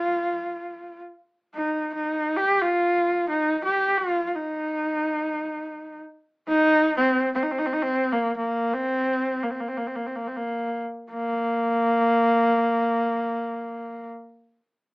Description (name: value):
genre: mongolian traditional, Mongolian folk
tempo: free time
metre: none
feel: none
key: Bb zhi mode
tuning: A4 = 439 Hz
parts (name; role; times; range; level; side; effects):
- warm horsehead fiddle; solo; 0.0-14.1 s; Bb3 to G4; -22 LUFS; equal; none
room: moderate studio reverb, RT60 0.5 s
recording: band playing live in one room, AM radio sound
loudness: -22 LUFS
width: side -31 dB against mid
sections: 0.0-11.1 A section; 11.1-14.9 B section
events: slowing down 6.8-11.1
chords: none